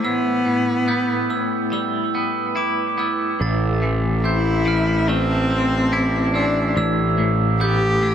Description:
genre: rock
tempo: 71 BPM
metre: 4/4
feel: straight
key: A minor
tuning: A4 = 440 Hz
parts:
  - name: rich cello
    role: melody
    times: 0.0-8.1 s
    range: B3 to G4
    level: -21 LUFS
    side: left 1 dB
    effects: analog delay
  - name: evolving wavetable pad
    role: sustained chords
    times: 0.0-8.1 s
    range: A3 to A5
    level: -30 LUFS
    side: right 3 dB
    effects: chorus, built-in reverb
  - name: glockenspiel with hard plastic mallets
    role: arpeggios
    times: 0.0-8.1 s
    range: D6 to A6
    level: -26 LUFS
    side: right 6 dB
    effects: analog delay
  - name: twangy electric guitar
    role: arpeggios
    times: 0.0-8.1 s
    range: A2 to E4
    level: -24 LUFS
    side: left 3 dB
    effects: tremolo, analog delay
  - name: fuzz picked electric bass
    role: bass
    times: 3.4-8.1 s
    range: A1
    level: -20 LUFS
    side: right 1 dB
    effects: overdrive
room: light reverb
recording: none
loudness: -17 LUFS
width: side -9 dB against mid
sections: 0.0-8.1 A section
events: none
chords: 0.0 Em/A; 3.4 Am; 6.8 Em/A

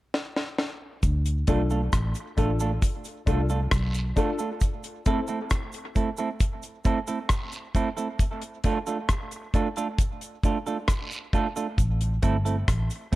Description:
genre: dub reggae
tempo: 67 BPM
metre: 4/4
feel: straight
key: D dorian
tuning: A4 = 441 Hz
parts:
  - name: deep reggae drum kit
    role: drums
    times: 0.1-13.2 s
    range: hi-hat, kick drum, rim click, snare drum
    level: -25 LUFS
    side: equal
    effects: none
  - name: vintage muted fingered electric bass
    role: bass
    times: 1.0-4.1, 11.8-13.2 s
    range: G1 to D2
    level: -25 LUFS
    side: equal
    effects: none
  - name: cabasa and guiro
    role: percussion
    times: 1.0-13.2 s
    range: none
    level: -42 LUFS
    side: right 5 dB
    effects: none
  - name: semi-hollow electric guitar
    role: accompaniment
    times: 1.5-13.2 s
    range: A3 to A4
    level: -30 LUFS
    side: right 4 dB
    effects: dub echo
  - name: dark upright piano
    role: stabs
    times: 1.5-5.2 s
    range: C4 to A4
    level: -33 LUFS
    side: left 5 dB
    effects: dub echo
room: light reverb, small room ambience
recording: dark, warm production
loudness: -24 LUFS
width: side -17 dB against mid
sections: 0.0-1.0 A section; 1.0-13.2 B section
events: drum fill 0.1-1.0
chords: 0.0 N.C.; 1.0 Dm; 4.6 Am; 8.2 Dm; 11.8 Am

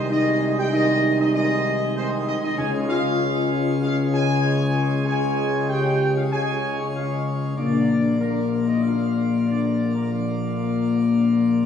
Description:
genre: classical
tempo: 96 BPM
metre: 4/4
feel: straight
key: unclear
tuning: A4 = 440 Hz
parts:
  - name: dark trumpet section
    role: melody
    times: 0.0-11.7 s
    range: F4 to Ab5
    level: -27 LUFS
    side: left 1 dB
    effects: none
  - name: bright trombone section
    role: sustained chords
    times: 0.0-11.7 s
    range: Db3 to Bb3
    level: -30 LUFS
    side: right 1 dB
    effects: none
  - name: dark French horn section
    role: sustained chords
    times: 0.0-11.7 s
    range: F3 to Ab4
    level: -27 LUFS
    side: left 1 dB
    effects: none
  - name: pipe organ, plenum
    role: sustained chords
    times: 0.0-11.7 s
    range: Bb2 to D5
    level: -24 LUFS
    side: left 4 dB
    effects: none
  - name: warm tuba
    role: bass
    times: 0.0-11.7 s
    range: Bb1 to Db2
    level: -24 LUFS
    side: equal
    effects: none
room: wet recital hall reverb, RT60 1.8 s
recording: heard from further back in the room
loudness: -19 LUFS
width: side -8 dB against mid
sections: 0.0-11.7 A section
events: none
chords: 0.0 Ab/C; 2.6 Db; 7.6 Bb

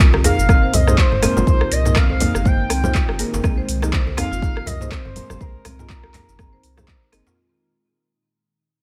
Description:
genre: afro house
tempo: 122 BPM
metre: 4/4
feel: swing 57% on 16ths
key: unclear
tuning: A4 = 441 Hz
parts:
  - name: ethereal airy pad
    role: sustained chords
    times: 0.4-7.3 s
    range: Bb2 to Eb4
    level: -34 LUFS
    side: equal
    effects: none
  - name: deep mellow chord stab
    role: stabs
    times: 0.0-7.3 s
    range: Bb3 to C5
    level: -29 LUFS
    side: equal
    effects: chorus, phaser, sidechain pumping, tape echo
  - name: warm sub bass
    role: bass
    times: 0.0-7.2 s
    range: G1 to C2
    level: -24 LUFS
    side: equal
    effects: sidechain pumping
  - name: afro-pop drum kit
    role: drums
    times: 0.0-7.4 s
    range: handclaps, hi-hat, rim click, shaker, toms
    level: -26 LUFS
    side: equal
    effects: none
  - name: electronic kick drum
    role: drums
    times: 0.0-7.0 s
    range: none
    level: -18 LUFS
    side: equal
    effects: none
  - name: marimba with hard mallets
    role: arpeggios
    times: 0.1-7.3 s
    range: C4 to C5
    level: -31 LUFS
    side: equal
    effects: sidechain pumping, tape echo
  - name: congas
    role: percussion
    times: 0.1-6.9 s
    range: none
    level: -30 LUFS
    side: equal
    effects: none
  - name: djembe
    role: percussion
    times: 0.1-7.4 s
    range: none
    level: -28 LUFS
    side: equal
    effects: none
  - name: expressive portamento lead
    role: melody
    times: 0.2-7.1 s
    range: Bb4 to G5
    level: -27 LUFS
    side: equal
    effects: lush chorus, tape echo
room: little or no reverb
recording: none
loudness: -18 LUFS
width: mono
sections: 0.0-7.4 A section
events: drop 0.0-7.4; fade-out 0.0-7.4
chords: 0.0 Absus2

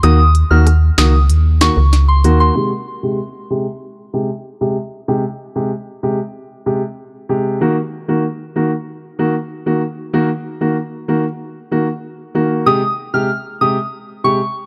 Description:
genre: dancehall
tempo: 95 BPM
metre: 4/4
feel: straight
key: Ab major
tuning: A4 = 441 Hz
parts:
  - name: soft synth bell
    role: melody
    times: 0.0-2.5, 12.7-14.3 s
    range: C6 to F6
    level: -20 LUFS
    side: equal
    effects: chorus, tape echo
  - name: warm grand piano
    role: accompaniment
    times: 0.0-14.4 s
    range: C3 to G4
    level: -20 LUFS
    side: equal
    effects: low-pass filter
  - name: woody FM bass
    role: bass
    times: 0.0-2.5 s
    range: Db2 to Eb2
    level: -13 LUFS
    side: equal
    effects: none
  - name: afro-pop drum kit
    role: drums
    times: 0.0-2.4 s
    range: finger snaps, hi-hat, rim click, snare drum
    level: -21 LUFS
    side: equal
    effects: none
room: light reverb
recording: dark, warm production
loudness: -17 LUFS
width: mono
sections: 0.0-2.6 A section; 2.6-12.7 B section; 12.7-14.7 A section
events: break 0.0-2.6; filter sweep on grand piano 2.6-12.7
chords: 0.0 Ebm; 2.6 Abmaj7; 7.6 Ebm; 12.7 Abmaj7

